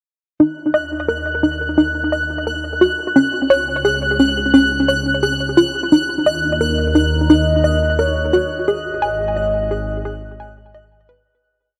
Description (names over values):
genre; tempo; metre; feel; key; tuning
ambient, sequencer-driven space music; 87 BPM; 4/4; straight; Eb minor; A4 = 440 Hz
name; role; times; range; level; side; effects
hollow square pluck; riff; 0.4-11.4 s; Db4 to Ab5; -19 LUFS; equal; chorus, tape echo
analog drone; bass; 0.4-11.4 s; Ab1 to Eb2; -26 LUFS; equal; chorus
pulsing gated texture; texture; 0.7-11.4 s; Gb6; -24 LUFS; equal; chorus, built-in reverb
mellow horn-like synth lead; melody; 6.6-10.7 s; Bb4 to Eb5; -24 LUFS; equal; subtle chorus, tape echo
room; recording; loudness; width
wet huge ambient reverb, RT60 8.7 s; none; -17 LUFS; mono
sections
0.4-11.4 A section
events
fade-in on synth drone 0.4-11.4; filter sweep on synth arpeggio sound 0.4-11.4; fade-out 7.8-11.4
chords
0.4 Ebm; 3.2 Dbsus4; 5.9 Ebm7; 8.7 Abm